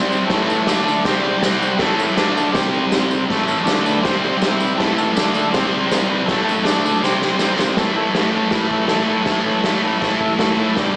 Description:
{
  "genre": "garage rock duo or trio",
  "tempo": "160 BPM",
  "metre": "4/4",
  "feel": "straight",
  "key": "unclear",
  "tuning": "A4 = 440 Hz",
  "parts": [
    { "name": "combo organ", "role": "sustained chords", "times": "0.0-11.0 s", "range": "C4 to A5", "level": "-22 LUFS", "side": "equal", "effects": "spring reverb" },
    { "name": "thick fuzz guitar", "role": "riff", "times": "0.0-11.0 s", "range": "G2 to D4", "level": "-18 LUFS", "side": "equal", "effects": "distortion, slapback echo" },
    { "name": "tambourine", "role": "percussion", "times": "0.1-7.7 s", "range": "none", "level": "-34 LUFS", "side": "equal", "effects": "none" },
    { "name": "raw garage drum kit", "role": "drums", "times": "0.3-10.9 s", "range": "crash cymbal, hi-hat, kick drum, snare drum", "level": "-20 LUFS", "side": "equal", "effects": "none" }
  ],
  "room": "light reverb",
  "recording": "live gig heard through the venue's PA, recital hall reverb, small speaker sound",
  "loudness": "-15 LUFS",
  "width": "side -23 dB against mid",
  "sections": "0.0-7.8 A section; 7.8-11.0 B section",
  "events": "transistor combo organ fill 0.7-1.8, 4.2-4.8; drum fill 7.0-7.8",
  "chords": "0.3 A; 0.7 D5; 1.1 C5; 1.8 A; 2.2 D5; 2.6 C5; 3.3 A; 3.7 D5; 4.1 C5; 4.8 A; 5.2 D5; 5.5 C5; 6.3 A; 6.7 D5; 7.0 C5; 7.8 A",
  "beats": "| 0.30 0.68 1.06 1.43 | 1.81 2.18 2.56 2.93 | 3.30 3.68 4.05 4.43 | 4.80 5.17 5.54 5.92 | 6.29 6.66 7.04 7.41 | 7.78 8.15 8.53 8.90 | 9.28 9.65 10.02 10.40 | 10.77"
}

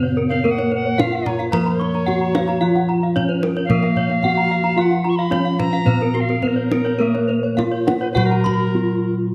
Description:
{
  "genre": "Balinese gamelan",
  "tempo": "110 BPM",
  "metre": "4/4",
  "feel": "uneven beats",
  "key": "Bb pelog",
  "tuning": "A4 = 440 Hz",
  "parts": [
    { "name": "gamelan-type bronze metallophone", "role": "melody", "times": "0.0-9.3 s", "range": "Bb3 to Bb4", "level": "-25 LUFS", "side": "equal", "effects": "none" },
    { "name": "gamelan-type bronze metallophone", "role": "accompaniment", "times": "0.0-9.3 s", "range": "Db3 to Cb4+35c", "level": "-27 LUFS", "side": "equal", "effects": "none" },
    { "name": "gamelan-type bronze metallophone", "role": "arpeggios", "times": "0.0-8.6 s", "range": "Gb4 to Db6", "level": "-28 LUFS", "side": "equal", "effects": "none" },
    { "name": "gamelan-type bossed gongs", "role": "bass", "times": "0.0-9.3 s", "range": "Bb2 to Bb4", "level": "-24 LUFS", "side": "equal", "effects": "none" },
    { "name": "gamelan-type bronze metallophone", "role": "arpeggios", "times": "0.2-8.5 s", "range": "Bb4 to Cb6+35c", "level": "-30 LUFS", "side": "equal", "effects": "none" },
    { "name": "alto recorder", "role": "second line", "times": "0.3-9.2 s", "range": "Bb4 to Db6", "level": "-28 LUFS", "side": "equal", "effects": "none" },
    { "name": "kendang", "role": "percussion", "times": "0.3-8.6 s", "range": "none", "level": "-27 LUFS", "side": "equal", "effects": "none" }
  ],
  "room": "light reverb",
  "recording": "close, detailed microphones, lossy compression artefacts",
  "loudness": "-19 LUFS",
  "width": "mono",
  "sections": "0.0-9.3 A section",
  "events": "none",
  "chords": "none",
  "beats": "| 0.45 0.99 1.53 2.07 | 2.61 3.15 3.69 4.23 | 4.77 5.32 5.87 6.43 | 7.00 7.58 8.16 8.75"
}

